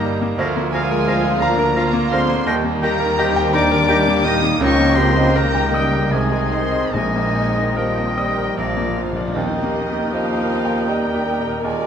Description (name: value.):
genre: classical, romantic movement for piano and orchestra.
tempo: 71-89 BPM.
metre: 3/4.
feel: rubato.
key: Eb major.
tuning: A4 = 440 Hz.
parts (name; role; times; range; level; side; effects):
clear grand piano; melody; 0.0-11.9 s; Bb1 to Eb6; -22 LUFS; equal; none.
muted chamber violin section; melody; 0.0-11.9 s; F5 to Eb6; -26 LUFS; left 1 dB; none.
clear oboe; second line; 0.0-11.9 s; D5 to G5; -28 LUFS; right 2 dB; none.
concert flute; second line; 0.0-11.9 s; Bb5 to Bb6; -28 LUFS; left 4 dB; none.
dark clarinet; second line; 0.0-11.9 s; Eb4 to Eb5; -28 LUFS; left 3 dB; none.
muted studio violin section; second line; 0.0-11.9 s; D4 to Ab5; -30 LUFS; left 2 dB; none.
muted chamber viola section; accompaniment; 0.0-11.9 s; Eb3 to Eb5; -27 LUFS; left 1 dB; none.
warm bassoon; accompaniment; 0.0-11.9 s; Eb3 to Ab3; -27 LUFS; right 2 dB; none.
mellow French horn section; sustained chords; 0.0-11.9 s; G3 to Bb4; -25 LUFS; left 3 dB; none.
muted chamber cello section; bass; 0.0-11.9 s; Eb2 to Eb3; -28 LUFS; right 3 dB; none.
muted chamber double bass section; bass; 0.0-11.9 s; G1 to Eb2; -25 LUFS; right 2 dB; none.
cymbal swell and tam-tam; percussion; 6.9-11.9 s; none; -34 LUFS; left 2 dB; none.
timpani; percussion; 6.9-10.5 s; Bb2 to Eb3; -30 LUFS; left 2 dB; none.
room: light reverb.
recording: close, detailed microphones.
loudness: -16 LUFS.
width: side -8 dB against mid.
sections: 0.0-9.3 A section; 9.3-11.9 B section.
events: timpani fill 8.6-9.3; band accent 9.3-10.1.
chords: 0.4 Bb7/D; 2.5 Eb; 4.6 Eb7/Db; 6.1 Ab/C; 6.9 Eb/Bb; 8.6 Bb; 9.3 Eb.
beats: | 0.40 1.08 1.76 | 2.48 3.19 3.90 | 4.62 5.36 6.13 | 6.94 7.78 8.57 | 9.35 10.14 10.90 | 11.65.